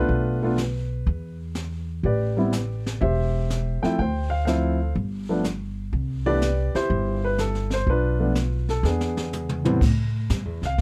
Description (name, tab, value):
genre	jazz piano trio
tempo	123 BPM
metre	4/4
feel	swing 68% on 8ths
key	C major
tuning	A4 = 440 Hz
part	warm grand piano	melody	0.0-10.8 s	A2 to G5	-27 LUFS	equal	none
part	upright bass	bass	0.0-10.8 s	E1 to A2	-27 LUFS	equal	none
part	jazz brush drum kit	drums	0.1-10.8 s	brushed snare drum, crash cymbal, hi-hat, kick drum, snare drum, toms	-30 LUFS	equal	none
room	little or no reverb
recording	dark, warm production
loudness	-24 LUFS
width	mono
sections	0.0-9.8 A section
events	drum fill 8.8-9.8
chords	0.1 Bm7b5; 1.1 N.C.; 2.0 Am9; 4.0 Dm7; 5.0 N.C.; 5.9 Cmaj13; 7.9 Bm7b5; 8.8 E7; 9.8 Am7